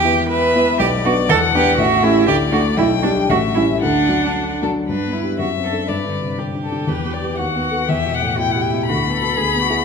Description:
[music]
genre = quick classical-period movement for piano trio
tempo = 120 BPM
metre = 2/4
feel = rubato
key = D major, G major from 4.9 s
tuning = A4 = 442 Hz
[part]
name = rich violin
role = melody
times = 0.0-9.8 s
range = A4 to B5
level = -21 LUFS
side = left 9 dB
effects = none
[part]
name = clear cello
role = second line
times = 0.0-9.8 s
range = D4 to B4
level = -19 LUFS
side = right 5 dB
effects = none
[part]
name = warm grand piano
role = accompaniment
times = 0.0-9.8 s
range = A1 to B4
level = -19 LUFS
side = left 2 dB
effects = none
[sound]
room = wet recital hall reverb, RT60 1.5 s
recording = minimal, uncompressed stereo recording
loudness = -15 LUFS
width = side -6 dB against mid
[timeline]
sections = 0.0-4.9 A section; 4.9-9.8 B section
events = none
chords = 0.0 Em; 0.8 Bm; 1.3 Em7; 1.8 A7; 2.3 D; 2.8 G/B; 3.3 A7; 3.8 D; 4.9 G; 5.4 D7/F#; 5.9 G; 6.9 Em; 7.4 B7/D#; 7.9 Em; 8.9 Bm/D

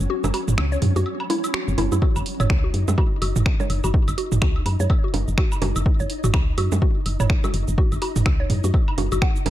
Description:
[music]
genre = minimal techno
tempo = 125 BPM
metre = 4/4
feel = swing 59% on 16ths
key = unclear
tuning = A4 = 442 Hz
[part]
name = woody FM bass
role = bass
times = 0.0-9.5 s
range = F#1 to F#2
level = -23 LUFS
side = equal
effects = sidechain pumping
[part]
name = punchy analog drum machine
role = drums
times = 0.0-9.5 s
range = finger snaps, hi-hat, shaker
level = -30 LUFS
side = right 1 dB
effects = none
[part]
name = flickering grainy texture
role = texture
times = 0.0-9.5 s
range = F#3 to D#4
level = -32 LUFS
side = equal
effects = built-in reverb, sidechain pumping
[part]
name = mallet-like synth pluck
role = riff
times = 0.1-9.3 s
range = E4 to F#5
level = -29 LUFS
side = left 1 dB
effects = chorus, cassette tape, sidechain pumping, ping-pong delay
[part]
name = electronic bongos, woodblock and toms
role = percussion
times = 0.2-9.5 s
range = none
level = -26 LUFS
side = right 3 dB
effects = ping-pong delay
[part]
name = electronic kick drum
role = drums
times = 2.0-9.3 s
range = none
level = -20 LUFS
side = equal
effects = none
[sound]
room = digital ambience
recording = dark, warm production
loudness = -18 LUFS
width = side -13 dB against mid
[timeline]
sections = 0.0-9.5 A section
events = kick drops out 0.1-2.0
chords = 0.0 F#5

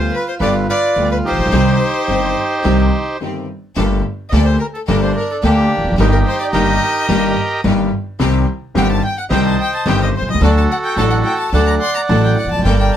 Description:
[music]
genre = tango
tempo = 108 BPM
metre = 4/4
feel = rubato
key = C harmonic minor, G harmonic minor from 3.8 s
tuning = A4 = 440 Hz
[part]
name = bandoneon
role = melody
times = 0.0-13.0 s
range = Bb3 to C6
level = -19 LUFS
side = right 2 dB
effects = none
[part]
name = warm violin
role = second line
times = 0.0-13.0 s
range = G4 to C6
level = -22 LUFS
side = left 4 dB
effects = none
[part]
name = warm baby grand piano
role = accompaniment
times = 0.0-12.9 s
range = G1 to A4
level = -18 LUFS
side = left 2 dB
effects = none
[part]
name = bright studio string section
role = stabs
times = 0.0-12.9 s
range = Bb3 to A4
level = -24 LUFS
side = equal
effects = none
[part]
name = upright bass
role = bass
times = 0.0-12.9 s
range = E1 to D2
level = -17 LUFS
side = right 1 dB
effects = none
[sound]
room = light reverb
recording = none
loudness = -13 LUFS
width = side -10 dB against mid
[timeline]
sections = 0.0-3.8 A section; 3.8-13.0 B section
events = break 3.2-3.8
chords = 0.0 G7; 1.5 Cm; 3.8 Gmadd9; 6.0 Eb/G; 8.2 Cm; 10.4 D

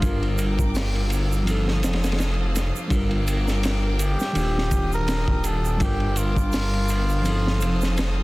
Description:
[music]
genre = trip hop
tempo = 83 BPM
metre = 4/4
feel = swing 56% on 16ths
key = G minor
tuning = A4 = 440 Hz
[part]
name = trumpet with cup mute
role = melody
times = 0.0-8.2 s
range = F4 to Bb4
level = -31 LUFS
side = equal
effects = tape echo
[part]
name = bell-like tine electric piano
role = accompaniment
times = 0.0-8.2 s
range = Eb3 to Bb4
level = -28 LUFS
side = left 1 dB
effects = harmonic tremolo, tape echo
[part]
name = rich chamber violin section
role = sustained chords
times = 0.0-8.2 s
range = D4 to Eb6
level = -34 LUFS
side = left 1 dB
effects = none
[part]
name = dark detuned saw bass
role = bass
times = 0.0-8.2 s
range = Eb1 to G1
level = -24 LUFS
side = equal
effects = none
[part]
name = crunchy breakbeat drum kit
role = drums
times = 0.0-8.2 s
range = hi-hat, kick drum, ride cymbal, snare drum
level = -26 LUFS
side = equal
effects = vintage 12-bit sampler grit
[part]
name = tube shaker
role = percussion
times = 0.0-8.1 s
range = none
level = -36 LUFS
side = right 7 dB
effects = none
[sound]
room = little or no reverb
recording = dense, heavily limited modern master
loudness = -20 LUFS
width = side -20 dB against mid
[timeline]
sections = 0.0-8.2 A section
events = none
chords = 0.0 Gm7; 1.5 F7; 2.9 Gm7; 4.4 Ebmaj9; 5.8 Gm7; 7.3 F7

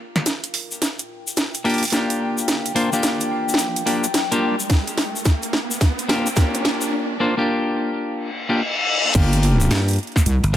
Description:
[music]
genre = glitch hop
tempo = 108 BPM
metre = 4/4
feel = swing 64% on 16ths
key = G minor pentatonic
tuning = A4 = 440 Hz
[part]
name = warbly tape-like pad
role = texture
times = 0.0-6.9 s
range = F4 to G5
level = -32 LUFS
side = left 3 dB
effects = chorus, built-in reverb, sidechain pumping
[part]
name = drum and bass drum kit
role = drums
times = 0.2-10.6 s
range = crash cymbal, hi-hat, snare drum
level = -23 LUFS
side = right 1 dB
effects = overdrive
[part]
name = tube shaker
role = percussion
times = 0.3-10.5 s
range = none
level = -29 LUFS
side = left 4 dB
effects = none
[part]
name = riser and reverse cymbal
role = sound effects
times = 2.5-9.1 s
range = none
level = -26 LUFS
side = left 1 dB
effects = none
[part]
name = clean electric guitar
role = stabs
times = 1.6-10.6 s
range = Bb3 to C5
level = -22 LUFS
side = left 1 dB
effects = sidechain pumping, low-pass filter, tape echo
[part]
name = electronic kick drum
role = drums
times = 4.7-10.6 s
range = none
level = -17 LUFS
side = equal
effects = overdrive
[part]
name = wobble bass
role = bass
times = 9.1-10.4 s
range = G1 to C2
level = -17 LUFS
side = equal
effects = chorus, tube saturation
[part]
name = dry thumbed slap bass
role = bass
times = 9.7-10.6 s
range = G1 to G2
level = -18 LUFS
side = equal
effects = none
[sound]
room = light reverb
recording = none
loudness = -18 LUFS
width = side -11 dB against mid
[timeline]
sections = 0.3-9.2 A section; 9.2-10.6 B section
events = build-up 0.3-9.2; drum fill 0.3-6.9; riser 2.5-6.9; reverse cymbal 8.3-9.2; drop 9.2-10.6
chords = 0.3 Gm7

